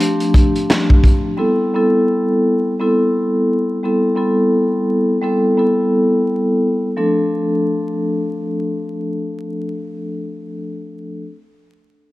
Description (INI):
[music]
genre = hip hop, boom-bap hip-hop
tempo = 86 BPM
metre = 4/4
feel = swing 59% on 16ths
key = D dorian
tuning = A4 = 439 Hz
[part]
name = vibraphone with soft mallets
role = accompaniment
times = 0.0-11.2 s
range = F3 to A4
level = -16 LUFS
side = equal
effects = high-pass filter, low-pass filter
[part]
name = crunchy breakbeat drum kit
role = drums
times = 0.0-1.2 s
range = hi-hat, kick drum, snare drum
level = -13 LUFS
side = equal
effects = none
[sound]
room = light reverb, small room reverb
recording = dark, warm production, vinyl crackle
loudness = -14 LUFS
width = side -18 dB against mid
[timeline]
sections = 0.0-7.0 A section; 7.0-9.8 B section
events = none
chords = 0.0 F69; 1.4 Am9; 7.0 Dm7